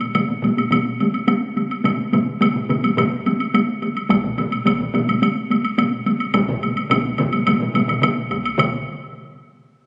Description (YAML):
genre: japanese traditional, taiko drum ensemble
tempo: 107 BPM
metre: 4/4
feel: straight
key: none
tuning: none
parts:
  - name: taiko ensemble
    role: percussion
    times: 0.0-8.8 s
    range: none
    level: -22 LUFS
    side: equal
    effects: none
  - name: woodblock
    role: percussion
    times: 0.0-8.8 s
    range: none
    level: -26 LUFS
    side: equal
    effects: none
  - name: solo taiko drums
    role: percussion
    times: 0.1-9.1 s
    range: none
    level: -31 LUFS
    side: equal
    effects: none
  - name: taiko ensemble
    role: percussion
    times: 1.8-9.1 s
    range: none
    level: -28 LUFS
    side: equal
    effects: none
  - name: solo taiko drums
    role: percussion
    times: 4.1-8.8 s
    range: none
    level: -30 LUFS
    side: equal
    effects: none
room: wet scoring stage reverb, RT60 1.7 s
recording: recorded on a phone in the room, club reverb, compression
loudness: -20 LUFS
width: mono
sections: 0.0-8.6 A section; 8.6-9.9 B section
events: none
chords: none